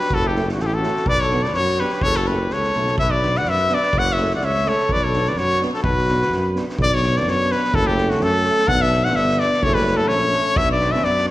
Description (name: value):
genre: balkan folk, Balkan brass band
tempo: 126 BPM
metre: 2/4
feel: swing 55% on 16ths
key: B minor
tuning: A4 = 439 Hz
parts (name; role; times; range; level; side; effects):
- clear trumpet; melody; 0.0-11.3 s; F#4 to F#5; -19 LUFS; left 2 dB; slapback echo
- mellow flugelhorn; second line; 0.0-6.5, 9.7-11.3 s; F#3 to D5; -27 LUFS; right 1 dB; slapback echo
- street-band drum kit; percussion; 0.0-11.3 s; kick drum, snare drum; -27 LUFS; equal; none
- mellow tuba; bass; 0.1-11.3 s; F#1 to F#2; -23 LUFS; equal; none
- mellow trombone; accompaniment; 0.3-11.3 s; C#4 to D4; -30 LUFS; left 2 dB; slapback echo
- warm euphonium; accompaniment; 0.4-11.3 s; A3 to B3; -26 LUFS; right 3 dB; slapback echo
room: light reverb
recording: live gig heard through the venue's PA, recital hall reverb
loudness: -16 LUFS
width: side -16 dB against mid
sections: 0.0-6.8 A section; 6.8-11.3 A section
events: none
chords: 0.1 F#m; 1.1 Bm; 2.0 F#m; 3.0 Bm; 3.9 F#m; 4.9 Bm; 7.7 F#m; 8.7 Bm; 9.6 F#m; 10.6 Bm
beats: | 0.11 0.59 | 1.07 1.55 | 2.03 2.50 | 2.98 3.46 | 3.94 4.42 | 4.89 5.37 | 5.84 6.32 | 6.79 7.27 | 7.74 8.21 | 8.69 9.16 | 9.63 10.10 | 10.57 11.04